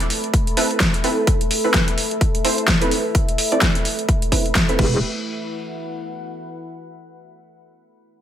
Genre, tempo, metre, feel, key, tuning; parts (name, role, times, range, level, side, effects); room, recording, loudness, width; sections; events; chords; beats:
bass house; 128 BPM; 4/4; swing 58% on 16ths; A4 = 438 Hz
orchestra-hit-like synth stab; stabs; 0.0-5.0 s; B3 to D5; -24 LUFS; right 2 dB; built-in reverb, sidechain pumping, digital delay
big-room dance drum kit; drums; 0.0-4.9 s; crash cymbal, hi-hat, snare drum; -21 LUFS; equal; overdrive
deep dark ambient pad; texture; 0.0-6.9 s; E4 to B5; -26 LUFS; equal; chorus, built-in reverb, sidechain pumping
electronic kick drum; drums; 0.3-4.9 s; -20 LUFS; equal; overdrive
metallic wobble bass; bass; 4.8-5.0 s; E1; -19 LUFS; equal; chorus, sidechain pumping
light reverb; -16 LUFS; side -10 dB against mid
0.0-5.0 A section; 5.0-6.9 B section
filter sweep on synth stab 0.0-5.0
0.0 Amadd9; 4.8 Em; 5.0 E5
0.34 0.80 | 1.27 1.74 2.21 2.68 | 3.15 3.62 4.08 4.55 | 5.02 5.49 5.96 6.43